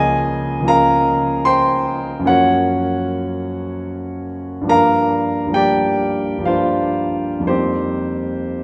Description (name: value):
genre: classical, impressionist solo piano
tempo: 56-78 BPM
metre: 3/4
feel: rubato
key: unclear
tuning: A4 = 439 Hz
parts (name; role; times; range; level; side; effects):
- warm concert grand piano; solo; 0.0-8.6 s; Db2 to C6; -18 LUFS; equal; none
room: moderate concert hall reverb, RT60 2.1 s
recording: none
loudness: -18 LUFS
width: mono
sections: 0.0-8.6 A section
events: none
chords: 0.0 Db6; 2.3 Gbmaj7; 4.7 Gm7; 7.5 F9sus4